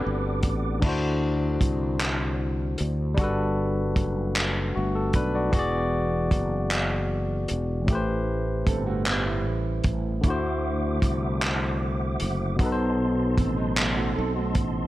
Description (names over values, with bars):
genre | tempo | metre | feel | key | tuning
slow six-eight R&B | 51 BPM (dotted quarters) | 6/8 | straight | unclear | A4 = 442 Hz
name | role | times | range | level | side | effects
barky tine electric piano | accompaniment | 0.0-14.9 s | A2 to D5 | -28 LUFS | left 2 dB | overdrive
mellow tonewheel organ | sustained chords | 0.0-0.8, 10.2-14.9 s | B3 to D6 | -34 LUFS | right 2 dB | chorus vibrato, fast rotary speaker
sustaining fretless electric bass | bass | 0.1-14.9 s | E1 to D2 | -28 LUFS | equal | none
warm soul drum kit | drums | 0.4-14.7 s | crash cymbal, handclaps, hi-hat, kick drum | -26 LUFS | equal | none
mellow electric guitar | second line | 8.7-14.9 s | D#3 to A4 | -32 LUFS | right 7 dB | none
room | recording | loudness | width
small room ambience | none | -23 LUFS | side -16 dB against mid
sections
0.8-14.9 A section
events
none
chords
0.0 Gmaj7; 0.8 D9; 3.2 Gmaj7; 5.5 E9; 7.9 Am9; 10.2 D9; 12.6 B7b9